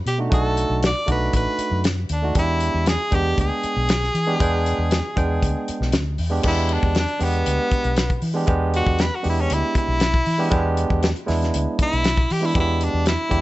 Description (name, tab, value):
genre	straight-eighth soul blues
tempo	118 BPM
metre	4/4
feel	straight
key	E mixolydian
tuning	A4 = 438 Hz
part	edgy tenor saxophone	melody	0.1-13.4 s	B3 to D5	-24 LUFS	equal	none
part	vintage muted fingered electric bass	bass	0.1-13.4 s	A1 to E3	-23 LUFS	equal	none
part	warm soul drum kit	drums	0.1-13.4 s	crash cymbal, hi-hat, kick drum, snare drum	-23 LUFS	left 1 dB	none
part	barky tine electric piano	accompaniment	0.2-13.4 s	G#3 to G5	-25 LUFS	right 3 dB	overdrive
room	studio reverb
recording	nothing above 8.0 kHz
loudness	-18 LUFS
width	side -17 dB against mid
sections	0.0-6.4 A section; 6.4-13.4 B section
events	tenor saxophone solo 6.4-13.4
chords	0.0 B7#9; 2.4 E7#9